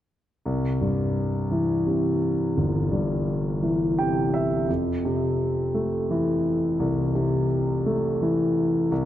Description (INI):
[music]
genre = pop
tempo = 57 BPM (dotted quarters)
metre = 6/8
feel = straight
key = C major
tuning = A4 = 440 Hz
[part]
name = warm concert grand piano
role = accompaniment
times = 0.5-9.1 s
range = G1 to G5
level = -22 LUFS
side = equal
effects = none
[sound]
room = moderate concert hall reverb, RT60 1.9 s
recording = none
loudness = -22 LUFS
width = side -12 dB against mid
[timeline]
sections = 0.5-8.9 A section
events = grand piano fill 3.6-4.7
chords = 0.5 C; 4.7 Fmaj7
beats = | 0.46 1.52 | 2.58 3.63 | 4.69 5.74 | 6.80 7.86 | 8.91